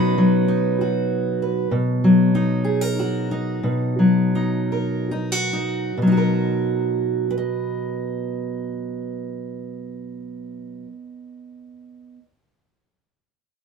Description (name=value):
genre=folk, solo fingerstyle acoustic guitar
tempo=66-98 BPM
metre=3/4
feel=straight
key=B major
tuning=A4 = 439 Hz
part: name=fingerpicked steel-string acoustic guitar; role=solo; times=0.0-12.2 s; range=B2 to D#5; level=-19 LUFS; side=equal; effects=none
room=light reverb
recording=minimal, uncompressed stereo recording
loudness=-19 LUFS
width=side -6 dB against mid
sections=0.0-1.7 A section; 1.7-6.0 B section; 6.0-11.4 C section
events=slowing down 1.7-6.0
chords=0.0 B; 1.7 Bmaj7